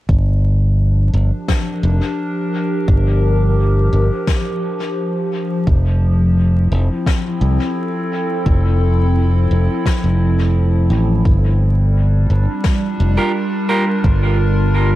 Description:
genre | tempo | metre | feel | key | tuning
ambient dub | 86 BPM | 4/4 | straight | G dorian | A4 = 441 Hz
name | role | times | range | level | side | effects
warbly tape-like pad | sustained chords | 0.9-15.0 s | F3 to Bb4 | -20 LUFS | left 1 dB | chorus, built-in reverb, phaser
modern bright fingered electric bass | bass | 0.1-15.0 s | F1 to C2 | -14 LUFS | equal | tube saturation
electronic kick drum | drums | 0.1-14.2 s | none | -16 LUFS | equal | none
snare drum | drums | 1.5-12.8 s | none | -28 LUFS | left 5 dB | dub echo
clean electric guitar | stabs | 13.2-13.8 s | F4 to Bb4 | -21 LUFS | right 2 dB | dub echo
room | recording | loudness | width
small room ambience | vinyl crackle | -14 LUFS | side -15 dB against mid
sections
0.1-15.0 A section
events
none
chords
0.1 Gm7; 5.7 Fmaj7; 11.3 Gm7

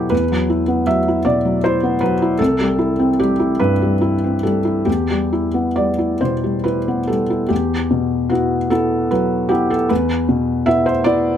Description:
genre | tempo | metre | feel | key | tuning
neoclassical minimalist piano | 44-54 BPM (dotted quarters) | 6/8 | rubato | E minor | A4 = 440 Hz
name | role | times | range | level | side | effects
felt-muted upright piano | solo | 0.0-11.4 s | C2 to E5 | -15 LUFS | equal | none
room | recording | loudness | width
light reverb | close, detailed microphones | -15 LUFS | side -9 dB against mid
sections
0.0-7.5 A section; 7.5-11.4 A section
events
none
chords
0.0 Esus2; 2.4 C; 4.9 Em; 7.5 Emadd9

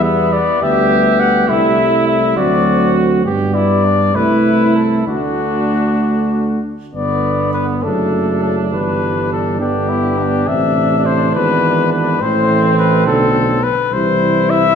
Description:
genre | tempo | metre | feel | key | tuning
classical, brass quintet | 63-71 BPM (dotted quarters) | 6/8 | rubato | G major | A4 = 440 Hz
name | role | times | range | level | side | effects
clear cornet | melody | 0.0-14.8 s | F#4 to F#5 | -17 LUFS | left 7 dB | none
clear trumpet | second line | 0.0-14.8 s | B3 to G4 | -20 LUFS | right 7 dB | none
dark French horn | accompaniment | 0.0-14.7 s | G3 to E4 | -21 LUFS | left 3 dB | none
dark euphonium | accompaniment | 0.0-14.8 s | C3 to A3 | -20 LUFS | right 3 dB | none
warm tuba | bass | 0.0-14.8 s | F#1 to G2 | -18 LUFS | right 3 dB | none
room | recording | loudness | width
wet recital hall reverb, RT60 1.7 s | minimal, uncompressed stereo recording | -12 LUFS | side -7 dB against mid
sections
0.0-6.9 A section; 6.9-14.8 B section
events
none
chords
0.0 Em; 1.5 Am7/C; 2.4 D7; 3.2 G; 4.1 Am/C; 5.1 D; 6.9 G; 7.8 D/F#; 8.7 G; 10.5 Am; 11.4 E/G#; 12.2 Am; 13.9 C

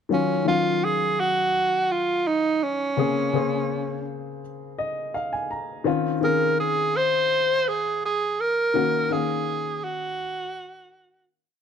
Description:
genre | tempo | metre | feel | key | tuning
soul | 83 BPM | 4/4 | straight | unclear | A4 = 441 Hz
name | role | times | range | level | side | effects
breathy tenor saxophone | melody | 0.1-11.3 s | Db4 to C5 | -22 LUFS | right 2 dB | none
warm concert grand piano | accompaniment | 0.1-11.6 s | Db3 to Bb5 | -26 LUFS | left 6 dB | none
room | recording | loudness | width
light reverb | none | -21 LUFS | side -8 dB against mid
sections
0.1-11.6 verse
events
grand piano fill 4.4-5.9; fade-out 8.8-11.6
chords
0.1 Ebm9; 3.0 Bbm9; 5.9 Dbmaj9; 8.8 Gb6

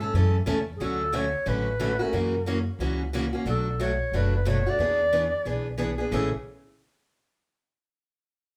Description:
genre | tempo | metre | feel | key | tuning
acoustic string swing (jazz manouche) | 181 BPM | 4/4 | swing 62% on 8ths | A major | A4 = 438 Hz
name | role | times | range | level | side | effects
warm clarinet | melody | 0.0-6.3 s | G#4 to D5 | -30 LUFS | equal | none
picked steel-string acoustic guitar | accompaniment | 0.0-6.3 s | A2 to A4 | -31 LUFS | equal | none
upright bass | bass | 0.0-6.3 s | F#1 to G#2 | -30 LUFS | equal | none
room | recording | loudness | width
light reverb | band playing live in one room | -26 LUFS | mono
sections
0.8-6.1 A section; 6.1-7.4 B section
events
none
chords
0.0 A; 0.8 Dmaj7; 2.1 F#7; 3.5 Bm7; 4.8 E7; 6.1 Amaj7

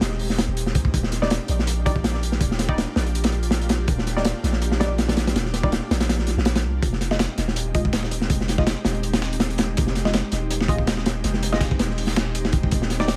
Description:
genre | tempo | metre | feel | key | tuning
drum and bass, jungle | 163 BPM | 4/4 | swing 54% on 16ths | F dorian | A4 = 440 Hz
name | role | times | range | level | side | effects
ethereal airy pad | sustained chords | 0.0-13.2 s | Ab3 to G4 | -33 LUFS | equal | ensemble chorus, built-in reverb
long sustained 808-style bass | bass | 0.0-13.2 s | Eb1 to D2 | -27 LUFS | equal | none
crunchy breakbeat drum kit | drums | 0.0-13.2 s | hi-hat, kick drum, snare drum | -25 LUFS | equal | none
filtered dub chord stab | stabs | 1.2-13.1 s | G3 to Eb5 | -33 LUFS | equal | chorus, dub echo
dusty soul sampler-style drum kit | drums | 6.8-13.2 s | hi-hat, snare drum | -37 LUFS | equal | high-pass filter on hats, high-pass filter on snare
room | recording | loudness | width
studio reverb | vinyl crackle | -22 LUFS | mono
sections
0.0-13.2 A section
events
kick drops out 6.1-6.8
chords
0.0 Fm7 (rootless); 0.9 Ebmaj7; 6.8 Fm7

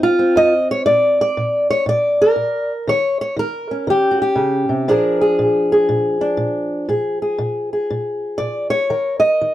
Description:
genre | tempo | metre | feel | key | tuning
acoustic country blues, solo or duo | 119 BPM | 4/4 | swing 66% on 8ths | Bb mixolydian | A4 = 439 Hz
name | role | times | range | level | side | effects
fingerpicked old ladder-braced acoustic guitar | solo | 0.0-9.5 s | F2 to Eb5 | -15 LUFS | equal | none
room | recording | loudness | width
moderate studio reverb, RT60 0.6 s | dark, warm production | -15 LUFS | side -13 dB against mid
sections
0.9-9.5 A section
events
none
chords
0.0 F5; 0.9 N.C.; 2.9 Eb7; 4.9 Bb7; 8.9 Eb7(no3)

